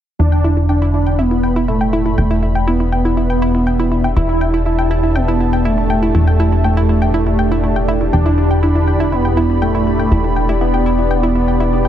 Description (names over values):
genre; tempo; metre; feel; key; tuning
techno; 121 BPM; 4/4; straight; E minor; A4 = 440 Hz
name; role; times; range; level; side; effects
wide unison lead; melody; 0.2-11.9 s; A3 to E4; -18 LUFS; right 1 dB; cassette tape, tape echo
warm analog pad; sustained chords; 0.2-11.9 s; D4 to B5; -23 LUFS; equal; chorus
analog pluck; arpeggios; 0.2-11.9 s; E4 to G5; -22 LUFS; right 1 dB; chorus, tape echo
plucky analog bass; bass; 0.2-11.9 s; E1; -16 LUFS; equal; none
swarming drone; drone; 2.7-11.9 s; E2; -24 LUFS; left 1 dB; none
warbly tape-like pad; texture; 1.1-11.9 s; E4 to G5; -26 LUFS; right 1 dB; chorus, built-in reverb
room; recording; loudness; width
light reverb, digital ambience; dense, heavily limited modern master; -13 LUFS; side -10 dB against mid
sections
0.2-11.9 A section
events
none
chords
0.2 Em7